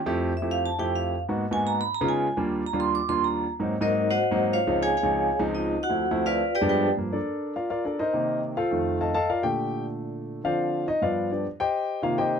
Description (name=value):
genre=jazz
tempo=208 BPM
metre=4/4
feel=straight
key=G minor from 7.0 s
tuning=A4 = 440 Hz
part: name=vibraphone with medium hard mallets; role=melody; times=0.0-6.9 s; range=Eb4 to D6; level=-25 LUFS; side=right 1 dB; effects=none
part: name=warm concert grand piano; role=accompaniment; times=0.1-12.4 s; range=Db2 to A5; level=-25 LUFS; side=equal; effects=none
room=light reverb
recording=none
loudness=-23 LUFS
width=side -7 dB against mid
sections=0.0-7.0 A section; 7.0-12.4 A section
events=vibraphone solo 0.0-7.0; grand piano solo 7.0-12.4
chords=0.1 Fmaj9; 1.2 Abm7; 1.8 Db9; 2.4 Ebmaj7; 3.5 Ab9; 4.7 Dbmaj7; 5.8 Dm9; 6.4 G7b9; 7.0 Gm9; 8.1 Cm7; 8.7 F7; 9.3 Bbmaj7; 10.4 Dm7; 11.0 G7; 11.6 Cm7